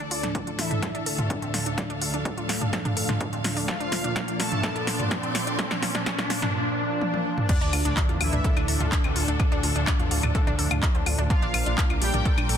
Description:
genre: melodic techno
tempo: 126 BPM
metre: 4/4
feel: straight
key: D minor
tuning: A4 = 439 Hz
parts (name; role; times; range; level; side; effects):
- resonant sweep polysynth; melody; 0.0-12.6 s; D3 to A4; -35 LUFS; equal; chorus, sidechain pumping, tape echo
- soft supersaw; second line; 0.0-12.6 s; D5 to A5; -36 LUFS; equal; phaser, sidechain pumping, dub echo
- sweeping resonant pad; sustained chords; 0.0-12.6 s; D2 to A4; -37 LUFS; left 1 dB; chorus, sidechain pumping
- wide unison pluck; arpeggios; 0.0-12.6 s; C4 to A5; -34 LUFS; equal; sidechain pumping, dub echo
- riser, swell and sub drop; sound effects; 1.7-9.4 s; none; -34 LUFS; equal; none
- warm symphonic string section; texture; 0.0-12.6 s; D4 to D6; -36 LUFS; left 1 dB; sidechain pumping
- techno drum kit; drums; 0.1-12.6 s; claves, crash cymbal, handclaps, hi-hat, snare drum, toms; -28 LUFS; equal; studio reverb
- analog synth brass; stabs; 0.2-12.6 s; A2 to D4; -31 LUFS; right 2 dB; chorus, cassette tape, sidechain pumping, dub echo
- electronic kick drum; drums; 0.3-12.4 s; none; -26 LUFS; equal; high-pass filter on kick, studio reverb
- dark detuned saw bass; bass; 7.6-12.6 s; Bb1 to E2; -27 LUFS; equal; sidechain pumping
room: light reverb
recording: dense, heavily limited modern master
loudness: -22 LUFS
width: side -8 dB against mid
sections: 0.0-7.5 A section; 7.5-12.6 B section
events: build-up 0.0-7.5; drum fill 0.0-6.5, 7.0-7.5; filter sweep on analog polysynth 0.0-7.5; riser 1.7-6.5; swell 6.5-7.5; drop 7.5-12.6; impact 7.5-9.4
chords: 0.0 Dm; 3.7 Bb; 7.5 Dm; 11.3 Bb

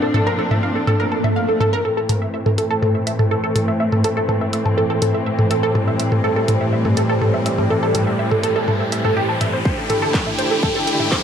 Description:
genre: melodic techno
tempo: 123 BPM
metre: 4/4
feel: straight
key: A phrygian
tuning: A4 = 444 Hz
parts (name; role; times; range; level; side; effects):
- muted studio string section; sustained chords; 0.0-11.2 s; A2 to G4; -21 LUFS; equal; sidechain pumping, low-pass filter
- wide unison pluck; arpeggios; 0.0-11.2 s; G4 to A5; -21 LUFS; right 1 dB; phaser, sidechain pumping, tape echo
- techno drum kit; drums; 0.1-11.2 s; handclaps, hi-hat, toms; -22 LUFS; equal; overdrive, small room ambience
- swell and riser; sound effects; 1.0-11.2 s; none; -27 LUFS; left 1 dB; none
- overtone-sweeping drone; drone; 2.6-11.2 s; A2 to E3; -29 LUFS; equal; chorus, built-in reverb, sidechain pumping
- electronic kick drum; drums; 9.7-11.2 s; none; -21 LUFS; equal; distortion, overdrive, small room ambience
room: light reverb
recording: dark, warm production, high-pass filter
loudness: -16 LUFS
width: side -8 dB against mid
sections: 0.0-1.8 A section; 1.8-11.2 B section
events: swell 1.0-1.8; build-up 1.8-11.2; riser 1.8-11.2; filter sweep on string section 1.8-11.2; filter sweep 1.8-11.2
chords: 0.0 Bb; 1.8 Am; 9.7 Dsus4

